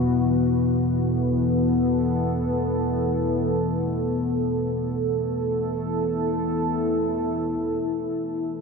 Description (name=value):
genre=dark ambient drone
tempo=free time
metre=none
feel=none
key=unclear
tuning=A4 = 440 Hz
part: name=deep dark ambient pad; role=sustained chords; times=0.0-8.6 s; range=E3 to B4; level=-22 LUFS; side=left 1 dB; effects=chorus, built-in reverb
part: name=deep rumbling drone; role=drone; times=0.0-8.6 s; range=E2 to B2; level=-29 LUFS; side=right 2 dB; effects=built-in reverb, wide subtle chorus
room=wet huge ambient reverb, RT60 8.1 s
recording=dreamy mix soaked in reverb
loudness=-22 LUFS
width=side -4 dB against mid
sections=0.0-7.6 A section; 7.6-8.6 B section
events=filter sweep on synth drone 7.6-8.6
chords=0.0 B5/E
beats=free time